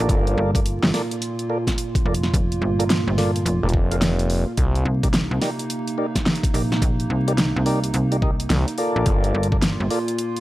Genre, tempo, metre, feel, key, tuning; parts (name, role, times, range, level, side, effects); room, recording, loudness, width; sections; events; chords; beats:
glitch hop; 107 BPM; 4/4; swing 63% on 16ths; C dorian; A4 = 439 Hz
warbly tape-like pad; sustained chords; 0.0-10.4 s; Bb2 to F4; -27 LUFS; right 2 dB; chorus, built-in reverb, sidechain pumping
mellow tonewheel organ; stabs; 0.0-10.0 s; Eb4 to F5; -27 LUFS; equal; slow rotary speaker, vintage 12-bit sampler grit, sidechain pumping, analog delay
slap-like FM bass; bass; 0.0-9.9 s; F1 to C2; -22 LUFS; equal; tube saturation
gritty driven synth bass; bass; 0.1-4.8, 8.5-9.3 s; F1 to C2; -21 LUFS; equal
electronic kick drum; drums; 0.1-9.6 s; -21 LUFS; equal; overdrive
pop drum kit; drums; 0.1-10.4 s; hi-hat, snare drum; -24 LUFS; equal; overdrive
little or no reverb; dry, gritty hardware recording, transformer saturation, vinyl crackle; -19 LUFS; side -16 dB against mid
0.0-10.4 A section
0.1 Gm9; 4.6 Cm7; 9.1 Gm9
| 0.09 0.65 1.21 1.77 | 2.33 2.89 3.46 4.02 | 4.58 5.14 5.70 6.26 | 6.82 7.38 7.94 8.50 | 9.06 9.62 10.18